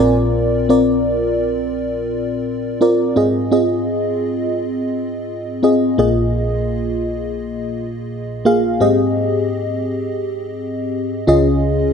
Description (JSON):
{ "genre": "pop", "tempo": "85 BPM", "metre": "4/4", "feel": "straight", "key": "unclear", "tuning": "A4 = 440 Hz", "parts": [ { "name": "FM electric piano with soft pad layer", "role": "solo", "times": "0.0-11.9 s", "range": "Bb1 to Ab5", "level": "-16 LUFS", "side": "equal", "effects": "chorus" } ], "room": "moderate concert hall reverb, RT60 2.4 s", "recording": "none", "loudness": "-16 LUFS", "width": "side -6 dB against mid", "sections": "0.0-6.0 A section; 6.0-11.9 B section", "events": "none", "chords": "0.0 Bbadd9; 3.2 Ab6; 6.0 Bb7sus4; 8.8 Abmaj7; 11.3 Dbadd9", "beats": "| 0.34 1.05 1.75 2.46 | 3.16 3.87 4.58 5.28 | 5.99 6.69 7.40 8.10 | 8.81 9.52 10.22 10.93 | 11.63" }